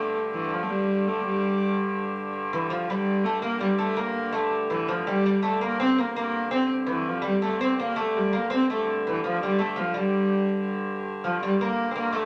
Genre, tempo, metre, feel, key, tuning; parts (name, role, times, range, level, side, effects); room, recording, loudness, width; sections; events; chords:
medieval dance; 110 BPM (dotted quarters); 6/8; straight; G dorian; A4 = 441 Hz
rich viola da gamba; melody; 0.0-12.3 s; E3 to C4; -27 LUFS; equal
clear hurdy-gurdy; drone; 0.0-12.3 s; G2 to D3; -33 LUFS; equal
lute; second line; 2.5-12.3 s; E3 to C4; -33 LUFS; equal
wet studio ambience, RT60 0.5 s; -26 LUFS; mono
0.0-2.3 A section; 2.3-11.1 A section; 11.1-12.3 B section